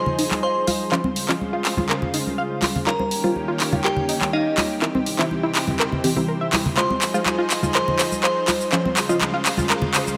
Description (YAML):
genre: progressive house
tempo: 123 BPM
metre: 4/4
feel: straight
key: F minor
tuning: A4 = 441 Hz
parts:
  - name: glassy synth bell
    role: melody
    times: 0.0-10.2 s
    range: Eb4 to C6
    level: -29 LUFS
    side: equal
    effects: chorus, tape echo
  - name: lush unison pad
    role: sustained chords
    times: 0.0-10.2 s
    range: C3 to C5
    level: -30 LUFS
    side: equal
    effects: chorus
  - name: unison pluck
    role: stabs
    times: 0.0-10.2 s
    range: E3 to Eb5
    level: -29 LUFS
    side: equal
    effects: digital delay
  - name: congas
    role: percussion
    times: 0.1-10.2 s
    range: none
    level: -30 LUFS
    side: equal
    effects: none
  - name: tight sequenced synth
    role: arpeggios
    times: 0.2-10.0 s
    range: C4 to F5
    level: -29 LUFS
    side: equal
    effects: chorus, digital delay
  - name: dark detuned saw bass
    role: bass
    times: 0.2-10.2 s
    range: none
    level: barely audible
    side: none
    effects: none
  - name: house drum kit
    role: drums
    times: 0.2-10.2 s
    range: handclaps, hi-hat, shaker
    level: -26 LUFS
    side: equal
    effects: overdrive
room: moderate lush hall reverb, RT60 1.7 s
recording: none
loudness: -21 LUFS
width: mono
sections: 0.0-10.2 A section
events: build-up 0.0-10.2; drum fill 0.0-10.2; filter sweep on synth arpeggio sound 0.0-10.2; filter sweep on synth pluck 0.0-10.2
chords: 0.0 Fm7; 0.9 Dbmaj7; 2.9 Eb7; 4.8 C; 6.8 Fm7; 8.7 Dbmaj7